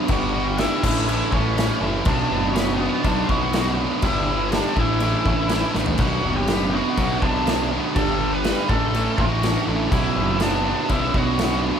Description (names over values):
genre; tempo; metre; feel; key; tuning
quiet-loud alternative rock; 122 BPM; 4/4; straight; B minor; A4 = 445 Hz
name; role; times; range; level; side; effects
thick fuzz guitar; riff; 0.0-11.8 s; B1 to A4; -25 LUFS; right 2 dB; distortion
tight distorted guitar; riff; 0.0-11.8 s; B1 to A3; -26 LUFS; right 1 dB; distortion
octave-fuzz lead guitar; melody; 0.1-11.6 s; B3 to B5; -26 LUFS; equal; distortion
fuzz picked electric bass; bass; 0.1-11.7 s; F#1 to B1; -25 LUFS; left 1 dB; overdrive
big rock drum kit; drums; 0.1-11.5 s; crash cymbal, kick drum, snare drum, toms; -25 LUFS; equal; none
room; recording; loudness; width
light reverb; band playing live in one room; -18 LUFS; side -8 dB against mid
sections
0.0-11.8 A section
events
drum fill 5.8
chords
0.1 G; 0.8 Asus4; 2.1 Bm; 4.0 G; 4.8 Asus4; 6.0 Bm; 8.0 G; 8.7 Asus4; 9.9 Bm